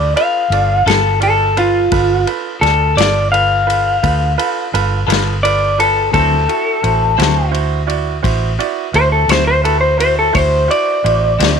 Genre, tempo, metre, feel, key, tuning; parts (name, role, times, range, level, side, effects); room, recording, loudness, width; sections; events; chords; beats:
slow blues; 57 BPM (dotted quarters); 12/8; straight; A4 = 441 Hz
electric guitar through a small old amp; melody; 0.0-11.6 s; F4 to F5; -14 LUFS; left 1 dB
bright concert grand piano; accompaniment; 0.0-11.6 s; E4 to D5; -21 LUFS; right 17 dB
vintage muted fingered electric bass; bass; 0.0-11.6 s; G1 to D2; -17 LUFS; equal
warm soul drum kit; drums; 0.2-11.6 s; kick drum, ride cymbal, snare drum; -22 LUFS; left 7 dB
semi-hollow electric guitar; accompaniment; 0.9-11.6 s; D3 to A4; -22 LUFS; left 16 dB; harmonic tremolo
small room ambience; 1960s-style stereo with parts hard left and right; -12 LUFS; side -6 dB against mid
0.0-11.6 A section
clean electric guitar solo 0.0-11.6
0.0 G9; 6.1 D9
0.87 | 1.92 2.97 4.03 5.08 | 6.14 7.19 8.24 9.30 | 10.35 11.40